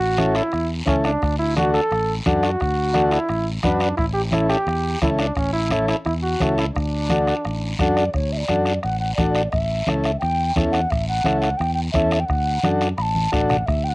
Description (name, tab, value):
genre	latin, cumbia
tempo	173 BPM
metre	4/4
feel	straight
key	D major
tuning	A4 = 440 Hz
part	bright trombone	second line	0.0-7.8 s	C#4 to A4	-23 LUFS	right 1 dB	cassette tape
part	fingered electric bass	bass	0.0-13.9 s	A1 to F#2	-24 LUFS	equal	none
part	overdriven combo organ	accompaniment	0.2-13.6 s	C#4 to B4	-21 LUFS	left 1 dB	cassette tape
part	bombo	percussion	0.2-13.9 s	none	-26 LUFS	equal	none
part	congas	percussion	0.2-13.8 s	none	-27 LUFS	equal	none
part	guiro	percussion	0.2-13.9 s	none	-32 LUFS	left 2 dB	none
part	bright alto ocarina	melody	8.0-13.9 s	C#5 to B5	-23 LUFS	equal	cassette tape
room	light reverb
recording	home recording on cassette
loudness	-18 LUFS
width	side -23 dB against mid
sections	0.0-8.1 A section; 8.1-13.9 B section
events	trombone solo 0.0-8.1; drum fill 13.2-13.7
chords	0.0 A; 1.2 D; 4.0 A7; 6.8 D; 9.5 A7; 12.3 D